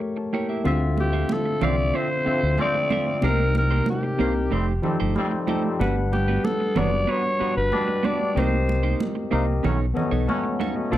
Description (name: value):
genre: lush 1970s-style soul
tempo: 93 BPM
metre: 4/4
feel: straight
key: unclear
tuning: A4 = 437 Hz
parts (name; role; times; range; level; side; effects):
- mellow tine electric piano; accompaniment; 0.0-11.0 s; C3 to A5; -26 LUFS; left 4 dB; overdrive
- clean electric guitar; riff; 0.0-11.0 s; A3 to F5; -29 LUFS; right 7 dB; none
- fingered electric bass; bass; 0.7-11.0 s; F1 to D2; -24 LUFS; equal; none
- congas; percussion; 0.7-11.0 s; none; -29 LUFS; right 4 dB; none
- growling alto saxophone; melody; 1.0-9.0 s; G4 to D5; -25 LUFS; equal; none
- muted trombone section; stabs; 1.6-10.9 s; G2 to Eb4; -31 LUFS; left 2 dB; none
room: small room reverb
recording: dry, close 1970s-style studio recording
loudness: -20 LUFS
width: side -13 dB against mid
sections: 0.7-11.0 A section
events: break 0.0-0.7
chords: 0.0 A7b9; 0.7 Dm9; 3.2 Cm7; 4.5 F9; 5.8 Gmaj7; 8.4 Cm7; 9.6 B9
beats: 0.01 | 0.65 1.29 1.94 2.58 | 3.22 3.87 4.51 5.15 | 5.79 6.44 7.08 7.72 | 8.36 9.00 9.64 10.28 | 10.93